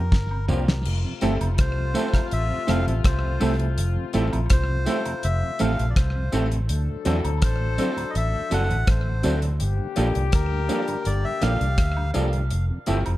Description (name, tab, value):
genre	lovers rock reggae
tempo	82 BPM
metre	4/4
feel	straight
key	F major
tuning	A4 = 441 Hz
part	melodica	melody	0.0-12.1 s	Bb4 to F#5	-31 LUFS	equal	tape echo
part	mellow tonewheel organ	accompaniment	0.0-13.2 s	D2 to F4	-35 LUFS	right 2 dB	none
part	vintage muted fingered electric bass	bass	0.0-13.2 s	F1 to F2	-23 LUFS	equal	none
part	damped 70s drum kit	drums	0.1-13.2 s	crash cymbal, hi-hat, kick drum, rim click, snare drum, toms	-23 LUFS	equal	none
part	woodblock and tambourine	percussion	0.3-13.2 s	none	-40 LUFS	right 2 dB	slapback echo
part	clear concert grand piano	accompaniment	0.5-13.0 s	A3 to A4	-31 LUFS	left 2 dB	none
part	electric guitar through a small old amp	stabs	0.5-13.0 s	F3 to A4	-28 LUFS	right 3 dB	slapback echo
part	clear horn section	second line	0.9-12.1 s	C3 to A4	-33 LUFS	left 8 dB	slapback echo
room	light reverb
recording	dark, warm production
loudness	-21 LUFS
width	side -16 dB against mid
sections	0.9-13.2 A section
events	drum fill 0.1-0.9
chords	0.0 C7sus4; 0.9 Fmaj7; 6.7 D7; 9.6 Gm7; 12.5 Fmaj7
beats	0.12 | 0.85 1.59 2.32 3.05 | 3.78 4.50 5.23 5.96 | 6.69 7.42 8.14 8.87 | 9.60 10.33 11.05 11.78 | 12.51